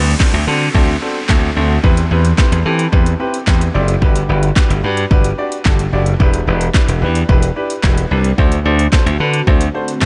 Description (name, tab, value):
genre	dance-pop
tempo	110 BPM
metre	4/4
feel	straight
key	unclear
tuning	A4 = 440 Hz
part	warm concert grand piano	accompaniment	0.0-10.1 s	C4 to B5	-23 LUFS	equal	sidechain pumping
part	glassy slap bass	bass	0.0-10.1 s	E1 to E3	-17 LUFS	equal	sidechain pumping
part	downlifter	sound effects	0.0-4.0 s	none	-30 LUFS	equal	none
part	deep house drum kit	drums	0.2-10.1 s	handclaps, hi-hat, kick drum, snare drum	-17 LUFS	equal	overdrive
part	ethereal airy pad	sustained chords	9.4-10.1 s	D3 to F#4	-34 LUFS	equal	none
room	light reverb, digital ambience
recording	nothing above 10.5 kHz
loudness	-14 LUFS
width	mono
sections	0.0-10.1 A section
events	grand piano fill 2.4-4.0, 7.6-8.4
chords	0.0 D7; 1.8 Cmaj7/E; 4.0 Gmaj7; 6.2 Em7; 8.4 D7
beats	0.20 0.75 1.29 | 1.84 2.38 2.93 3.47 | 4.02 4.56 5.11 5.66 | 6.20 6.75 7.29 7.84 | 8.38 8.93 9.47 10.02